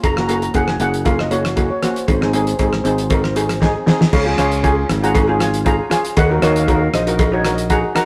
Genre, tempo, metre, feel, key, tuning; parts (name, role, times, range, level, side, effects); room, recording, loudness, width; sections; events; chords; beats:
calypso; 118 BPM; 4/4; swing 53% on 16ths; Db major; A4 = 440 Hz
steel pan; melody; 0.0-8.1 s; C5 to Bb5; -26 LUFS; equal; digital delay
fingered electric bass; bass; 0.0-7.8 s; Gb1 to Eb2; -22 LUFS; equal
damped 70s drum kit; drums; 0.0-8.1 s; crash cymbal, hi-hat, kick drum, rim click, snare drum; -21 LUFS; equal
cowbell; percussion; 0.0-7.8 s; -26 LUFS; equal
steel pan; accompaniment; 0.2-8.1 s; Bb3 to Db5; -22 LUFS; equal
light reverb; rough rehearsal-room recording, tube saturation; -17 LUFS; mono
0.0-4.1 A section; 4.1-8.1 B section
drum fill 3.6-4.1
0.0 Gb; 2.1 Ab; 4.1 Db; 6.2 Ebm
| 0.04 0.55 1.06 1.57 | 2.08 2.60 3.11 3.62 | 4.13 4.64 5.15 5.66 | 6.17 6.68 7.19 7.70